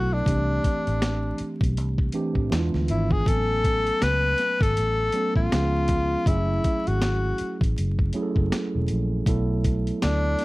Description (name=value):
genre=R&B, neo-soul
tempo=80 BPM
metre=4/4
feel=swing 58% on 16ths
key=unclear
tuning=A4 = 440 Hz
part: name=breathy tenor saxophone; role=melody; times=0.0-10.4 s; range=D4 to B4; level=-25 LUFS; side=left 2 dB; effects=none
part: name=mellow tine electric piano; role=accompaniment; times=0.0-10.4 s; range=E3 to G#5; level=-29 LUFS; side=right 2 dB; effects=none
part: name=vintage muted fingered electric bass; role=bass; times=0.0-10.3 s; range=E1 to E2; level=-25 LUFS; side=equal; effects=transformer saturation
part: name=boom bap sampler-style drum kit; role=drums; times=0.3-10.4 s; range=hi-hat, kick drum, snare drum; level=-26 LUFS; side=equal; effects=none
room=little or no reverb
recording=dry, close 1970s-style studio recording, vinyl crackle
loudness=-21 LUFS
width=side -20 dB against mid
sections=0.0-10.4 A section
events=none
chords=0.3 C69; 2.5 E7b9; 3.3 Amaj13; 5.5 C#7; 6.3 F#m9; 9.3 B7sus4